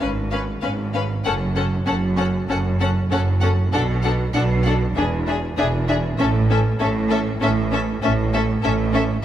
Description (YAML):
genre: quick classical-period movement for string orchestra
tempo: 98 BPM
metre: 4/4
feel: straight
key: A major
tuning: A4 = 440 Hz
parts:
  - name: rich chamber violin section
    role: melody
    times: 0.0-9.0 s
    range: E5 to F#5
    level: -30 LUFS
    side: left 4 dB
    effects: none
  - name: rich studio violin section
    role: second line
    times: 0.0-9.0 s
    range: G#4 to B4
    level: -27 LUFS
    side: left 5 dB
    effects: none
  - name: rich symphonic viola section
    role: accompaniment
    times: 0.0-9.0 s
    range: C#4 to D4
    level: -26 LUFS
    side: left 1 dB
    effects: none
  - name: bright studio cello section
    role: bass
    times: 0.0-9.2 s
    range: E2 to B2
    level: -24 LUFS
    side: right 3 dB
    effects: none
  - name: clear chamber double bass section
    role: bass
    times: 0.0-9.2 s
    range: E1 to B1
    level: -23 LUFS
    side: right 1 dB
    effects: none
room: moderate scoring stage reverb, RT60 1.8 s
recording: none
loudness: -18 LUFS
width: side -11 dB against mid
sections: 0.0-9.2 A section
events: none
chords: 0.0 C#7(no3)/G#; 1.2 F#m; 3.7 Bm; 5.0 E7; 6.2 A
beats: 0.01 0.62 | 1.25 1.87 2.49 3.11 | 3.73 4.35 4.96 5.58 | 6.19 6.80 7.41 8.03 | 8.63